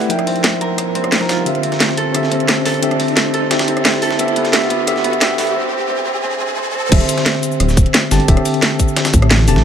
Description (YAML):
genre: liquid drum and bass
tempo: 176 BPM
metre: 4/4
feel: straight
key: D dorian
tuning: A4 = 440 Hz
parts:
  - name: tine electric piano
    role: accompaniment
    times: 0.0-9.6 s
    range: D3 to Bb5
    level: -18 LUFS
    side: left 1 dB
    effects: medium stereo tremolo, digital delay
  - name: Celtic harp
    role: arpeggios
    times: 0.0-9.6 s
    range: B3 to Bb4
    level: -22 LUFS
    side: right 3 dB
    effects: digital delay
  - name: dusty soul sampler-style drum kit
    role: drums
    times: 0.0-9.6 s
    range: hi-hat, snare drum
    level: -22 LUFS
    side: equal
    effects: high-pass filter on hats, high-pass filter on snare
  - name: riser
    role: sound effects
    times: 0.0-6.9 s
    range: none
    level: -25 LUFS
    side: right 1 dB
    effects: none
  - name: dark detuned saw bass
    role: bass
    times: 0.1-9.6 s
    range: D1 to D2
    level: -18 LUFS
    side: equal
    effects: high-pass filter
  - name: garage drum kit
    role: drums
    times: 0.1-9.5 s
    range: cabasa, crash cymbal, hi-hat, rim click, snare drum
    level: -19 LUFS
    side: equal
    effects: none
  - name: electronic kick drum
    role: drums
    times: 6.9-9.2 s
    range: none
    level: -12 LUFS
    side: equal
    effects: none
room: moderate huge ambient reverb, RT60 8.4 s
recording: high-pass filter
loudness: -13 LUFS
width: side -8 dB against mid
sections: 0.0-6.9 A section; 6.9-9.6 B section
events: build-up 0.0-6.9; riser 0.0-6.9; break 5.6-6.9; drop 6.9-9.6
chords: 0.1 F9sus4; 1.5 D9sus4; 4.2 A9sus4; 5.6 N.C.; 6.9 D9sus4